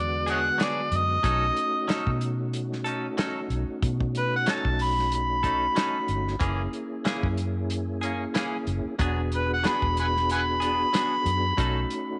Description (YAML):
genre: straight-eighth soul blues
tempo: 93 BPM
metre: 4/4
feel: swing 56% on 16ths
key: B mixolydian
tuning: A4 = 440 Hz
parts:
  - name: overdriven harmonica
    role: melody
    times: 0.0-12.2 s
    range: B4 to B5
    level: -28 LUFS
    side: equal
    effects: slapback echo
  - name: mellow tonewheel organ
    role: accompaniment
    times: 0.0-12.2 s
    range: D3 to G#4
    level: -35 LUFS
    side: equal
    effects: slow rotary speaker, chorus vibrato
  - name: vintage muted fingered electric bass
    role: bass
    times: 0.0-11.8 s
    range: E1 to B2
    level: -32 LUFS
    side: equal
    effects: none
  - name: direct-recorded clean electric guitar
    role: stabs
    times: 0.3-11.8 s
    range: E3 to A4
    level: -36 LUFS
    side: equal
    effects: lush chorus
  - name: warm soul drum kit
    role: drums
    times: 0.3-12.1 s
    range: hi-hat, kick drum, snare drum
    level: -33 LUFS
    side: equal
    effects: none
room: light reverb, studio reverb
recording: nothing above 10.7 kHz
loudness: -26 LUFS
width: mono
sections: 0.0-12.2 A section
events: none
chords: 0.0 E9; 1.2 B9; 6.4 F#9; 9.0 E9; 11.6 B9